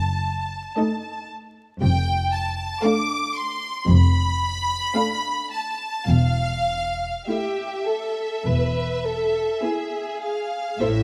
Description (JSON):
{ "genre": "classical, slow romantic movement for string orchestra", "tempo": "50-60 BPM", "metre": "4/4", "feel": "rubato", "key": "unclear", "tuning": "A4 = 440 Hz", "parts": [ { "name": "warm symphonic violin section", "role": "melody", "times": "0.0-11.0 s", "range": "E5 to D6", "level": "-29 LUFS", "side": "equal", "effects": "none" }, { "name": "rich symphonic cello section", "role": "bass", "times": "0.0-11.0 s", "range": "E2 to A2", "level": "-25 LUFS", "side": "equal", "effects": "none" }, { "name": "warm symphonic double bass section", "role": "bass", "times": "0.0-11.0 s", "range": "E1 to A1", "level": "-26 LUFS", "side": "equal", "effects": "none" }, { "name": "warm symphonic violin section", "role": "second line", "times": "0.8-10.9 s", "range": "G4 to F5", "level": "-28 LUFS", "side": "equal", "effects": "none" }, { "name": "dark symphonic viola section", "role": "accompaniment", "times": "0.8-10.9 s", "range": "A3 to E4", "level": "-28 LUFS", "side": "equal", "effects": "none" } ], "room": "light reverb", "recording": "close, detailed microphones, vinyl crackle", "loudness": "-23 LUFS", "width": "mono", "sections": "0.0-10.8 A section", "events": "none", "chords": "0.0 D#dim/F#; 1.8 Dm/F; 6.1 A5/E; 8.5 E" }